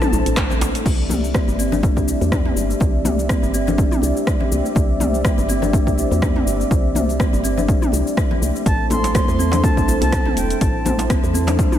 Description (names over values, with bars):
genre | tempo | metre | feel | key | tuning
afro house | 123 BPM | 4/4 | swing 56% on 16ths | unclear | A4 = 439 Hz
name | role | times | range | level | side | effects
bright reedy concert flute | melody | 0.0-0.6, 8.7-11.1 s | G5 to C6 | -26 LUFS | equal | ping-pong delay
dark analog pad | sustained chords | 0.0-11.8 s | A3 to E5 | -25 LUFS | equal | chorus, sidechain pumping
kalimba | arpeggios | 0.0-11.8 s | G3 to E4 | -24 LUFS | equal | sidechain pumping, ping-pong delay
deep house drum kit | drums | 0.0-11.8 s | cabasa, crash cymbal, handclaps, hi-hat, rim click, toms | -26 LUFS | left 1 dB | overdrive
woody FM bass | bass | 0.1-11.7 s | E1 to E2 | -23 LUFS | equal | sidechain pumping
congas | percussion | 0.1-11.6 s | none | -27 LUFS | left 4 dB | none
djembe | percussion | 0.1-0.8, 8.9-11.8 s | none | -28 LUFS | right 1 dB | none
electronic kick drum | drums | 0.4-11.7 s | none | -19 LUFS | equal | overdrive
room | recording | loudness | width
light reverb, small room ambience | none | -16 LUFS | side -10 dB against mid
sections
0.9-11.8 A section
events
none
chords
0.0 Am; 0.9 Cadd9; 8.7 Am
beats
0.37 | 0.86 1.35 1.83 2.32 | 2.81 3.30 3.79 4.27 | 4.76 5.25 5.74 6.22 | 6.71 7.20 7.69 8.18 | 8.66 9.15 9.64 10.13 | 10.61 11.10 11.59